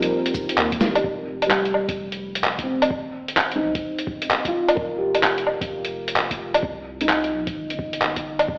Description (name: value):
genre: future garage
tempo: 129 BPM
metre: 4/4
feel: swing 63% on 16ths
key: unclear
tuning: A4 = 440 Hz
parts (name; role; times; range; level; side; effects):
- dark upright piano; accompaniment; 0.0-8.5 s; F3 to Bb4; -25 LUFS; equal; vintage 12-bit sampler grit, sidechain pumping, analog delay
- dark analog pad; sustained chords; 0.0-1.0, 8.5-8.6 s; C4 to Bb4; -26 LUFS; equal; chorus, sidechain pumping
- soft dub sub bass; bass; 0.0-8.6 s; Eb1 to Eb2; -37 LUFS; equal; none
- lo-fi sampler-style drum kit; drums; 0.0-8.5 s; cabasa, handclaps, hi-hat, snare drum, woodblock; -20 LUFS; equal; none
- electronic kick drum; drums; 0.3-8.6 s; none; -31 LUFS; equal; none
room: moderate digital room reverb, RT60 0.9 s, digital ambience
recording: played on a big sound system in a bare room, stone room reverb, AM radio sound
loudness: -20 LUFS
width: side -38 dB against mid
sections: 0.0-1.0 A section; 1.0-8.6 B section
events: drum fill 0.8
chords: 0.0 Cm7; 1.0 Fsus2; 2.9 Ebsus2; 4.8 Fsus2; 6.6 Cm7